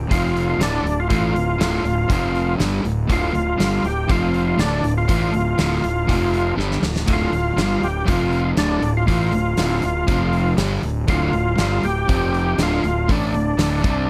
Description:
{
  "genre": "classic rock",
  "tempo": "120 BPM",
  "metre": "4/4",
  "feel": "straight",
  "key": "D minor",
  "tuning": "A4 = 440 Hz",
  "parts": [
    { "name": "overdriven semi-hollow guitar", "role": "riff", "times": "0.0-14.1 s", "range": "D2 to C4", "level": "-28 LUFS", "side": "equal", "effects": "none" },
    { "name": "overdriven semi-hollow guitar", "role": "riff", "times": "0.0-14.1 s", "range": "D2 to C4", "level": "-28 LUFS", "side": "equal", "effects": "none" },
    { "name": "fuzz fingered electric bass", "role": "bass", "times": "0.0-14.1 s", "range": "D1 to C2", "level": "-26 LUFS", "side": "equal", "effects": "overdrive" },
    { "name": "overdriven tonewheel organ", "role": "melody", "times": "0.1-14.1 s", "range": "D4 to G4", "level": "-25 LUFS", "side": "equal", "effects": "chorus vibrato, slapback echo" },
    { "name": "gated 80s drum kit", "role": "drums", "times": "0.1-14.0 s", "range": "crash cymbal, hi-hat, kick drum, snare drum", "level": "-26 LUFS", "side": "equal", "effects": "none" }
  ],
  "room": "little or no reverb",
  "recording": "none",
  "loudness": "-20 LUFS",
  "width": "mono",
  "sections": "0.0-14.1 A section",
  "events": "drum fill 6.6-7.1",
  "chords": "0.1 F5; 0.6 Dm; 2.1 F5; 2.6 Dm; 4.1 F5; 4.6 Dm; 6.1 F5; 6.6 Dm; 8.1 F5; 8.6 Dm; 10.1 F5; 10.6 Dm; 12.1 F5; 12.6 Dm"
}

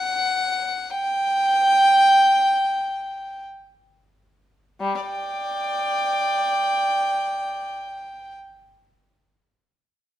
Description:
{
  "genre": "classical, baroque-style suite movement for unaccompanied violin",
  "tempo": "free time",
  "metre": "none",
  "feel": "none",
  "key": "unclear",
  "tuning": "A4 = 441 Hz",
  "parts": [
    { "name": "warm violin", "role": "solo", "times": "0.0-8.4 s", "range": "G3 to G5", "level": "-19 LUFS", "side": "equal", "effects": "none" }
  ],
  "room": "moderate stone room reverb, RT60 1.0 s",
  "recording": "heard from further back in the room",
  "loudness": "-19 LUFS",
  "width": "side -13 dB against mid",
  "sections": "0.0-4.8 A section; 4.8-8.9 B section",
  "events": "slowing down 0.0-4.8",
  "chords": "none"
}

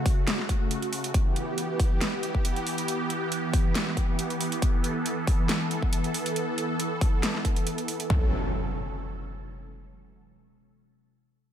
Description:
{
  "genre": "heavy wobble dubstep",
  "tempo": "138 BPM",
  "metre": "4/4",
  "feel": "swing 53% on 16ths, half-time",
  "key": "F# phrygian",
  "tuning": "A4 = 436 Hz",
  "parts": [
    { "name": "supersaw pad", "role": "sustained chords", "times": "0.0-8.3 s", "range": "C#3 to A4", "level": "-30 LUFS", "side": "right 1 dB", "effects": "phaser, sidechain pumping" },
    { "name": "big-room dance drum kit", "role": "drums", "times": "0.1-8.2 s", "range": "kick drum, toms", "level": "-24 LUFS", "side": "equal", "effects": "small room reverb" },
    { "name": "dubstep drum kit", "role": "drums", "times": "0.1-8.1 s", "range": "hi-hat, snare drum", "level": "-31 LUFS", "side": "equal", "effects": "small room reverb" },
    { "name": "impact", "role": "sound effects", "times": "8.1-9.8 s", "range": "none", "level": "-33 LUFS", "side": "equal", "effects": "none" }
  ],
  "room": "light reverb",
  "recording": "none",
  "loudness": "-25 LUFS",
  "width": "side -10 dB against mid",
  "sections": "0.0-8.1 A section; 8.1-9.8 B section",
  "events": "none",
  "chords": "0.0 F#m; 1.1 G6; 4.6 Asus2; 8.1 F#m"
}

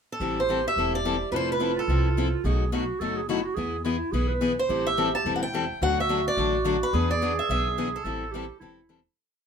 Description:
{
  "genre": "acoustic string swing (jazz manouche)",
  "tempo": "214 BPM",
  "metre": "4/4",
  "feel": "swing 56% on 8ths",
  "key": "A minor",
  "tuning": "A4 = 440 Hz",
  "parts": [
    { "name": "picked swing-style acoustic guitar", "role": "melody", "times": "0.1-2.3, 4.6-8.9 s", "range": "A4 to A5", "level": "-27 LUFS", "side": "equal", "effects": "none" },
    { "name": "growling clarinet", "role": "second line", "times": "0.2-9.0 s", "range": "E4 to B4", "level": "-30 LUFS", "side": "right 5 dB", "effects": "none" },
    { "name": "picked steel-string acoustic guitar", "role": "accompaniment", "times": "0.2-9.0 s", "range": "B2 to A4", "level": "-29 LUFS", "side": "left 5 dB", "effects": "none" },
    { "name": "upright bass", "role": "bass", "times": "0.2-9.1 s", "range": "E1 to E2", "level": "-29 LUFS", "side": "equal", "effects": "none" }
  ],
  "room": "moderate studio reverb, RT60 0.6 s",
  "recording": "minimal, uncompressed stereo recording",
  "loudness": "-23 LUFS",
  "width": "side -7 dB against mid",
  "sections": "0.0-0.2 pickup bar; 0.2-9.2 A section",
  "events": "fade-out 7.4-9.2",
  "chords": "0.2 Am7; 1.3 Fmaj7; 2.4 B7; 3.6 E; 4.7 Am7; 5.8 D; 6.9 E7; 8.1 Am7"
}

